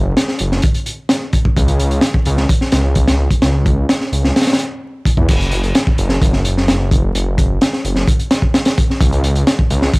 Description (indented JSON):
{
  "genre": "breakbeat, breaks",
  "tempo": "129 BPM",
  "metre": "4/4",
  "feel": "straight",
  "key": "unclear",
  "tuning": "A4 = 438 Hz",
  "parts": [
    { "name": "detuned saw bass", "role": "bass", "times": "0.0-9.9 s", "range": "F#1 to E2", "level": "-16 LUFS", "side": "equal", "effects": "tube saturation" },
    { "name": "crunchy breakbeat drum kit", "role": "drums", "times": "0.2-10.0 s", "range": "crash cymbal, hi-hat, kick drum, snare drum", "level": "-14 LUFS", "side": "equal", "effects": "none" }
  ],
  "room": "little or no reverb",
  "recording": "dry, gritty hardware recording, transformer saturation, vinyl crackle",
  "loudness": "-12 LUFS",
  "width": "side -30 dB against mid",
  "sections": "0.0-5.3 A section; 5.3-10.0 B section",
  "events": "drop 5.3-10.0",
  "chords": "none"
}